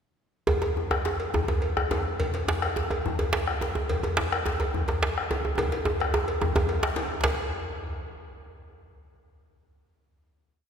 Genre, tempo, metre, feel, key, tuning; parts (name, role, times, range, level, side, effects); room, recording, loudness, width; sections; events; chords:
west african traditional, West African drum ensemble; 143 BPM (dotted quarters); 12/8; straight
bombo; percussion; 0.5-7.4 s; -32 LUFS; left 2 dB
cowbell; percussion; 0.5-7.4 s; -34 LUFS; equal
djembe; percussion; 0.5-7.4 s; -33 LUFS; left 3 dB
djembe; percussion; 0.5-7.4 s; -27 LUFS; right 1 dB
wet church reverb, RT60 3.0 s; recorded in a church or concert hall; -25 LUFS; side -7 dB against mid
0.5-7.2 A section; 7.2-8.9 final hit
speeding up 0.5-8.9; drum fill 5.6-7.2